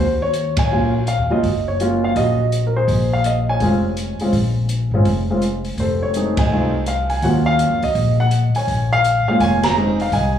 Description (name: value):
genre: jazz piano trio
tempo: 166 BPM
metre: 4/4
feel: swing 64% on 8ths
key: Bb minor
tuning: A4 = 440 Hz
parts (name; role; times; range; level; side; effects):
- warm grand piano; melody; 0.0-10.4 s; Gb3 to Bb5; -18 LUFS; equal; slapback echo
- upright bass; bass; 0.0-10.4 s; F1 to F2; -20 LUFS; equal; none
- open jazz drum kit; drums; 0.3-10.2 s; hi-hat, kick drum, ride cymbal, snare drum; -26 LUFS; equal; none
room: light reverb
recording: live gig heard through the venue's PA, club reverb, studio ambience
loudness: -16 LUFS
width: side -9 dB against mid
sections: 0.0-10.4 A section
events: band accent 0.5, 6.3, 9.6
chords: 0.0 Ebm9; 2.9 Bbm9; 5.8 F7#9; 7.2 Ebm9; 8.7 Bbm7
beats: 0.35 0.71 1.07 | 1.43 1.80 2.16 2.52 | 2.88 3.25 3.61 3.97 | 4.33 4.70 5.06 5.42 | 5.78 6.14 6.51 6.87 | 7.23 7.59 7.96 8.32 | 8.68 9.04 9.40 9.77 | 10.13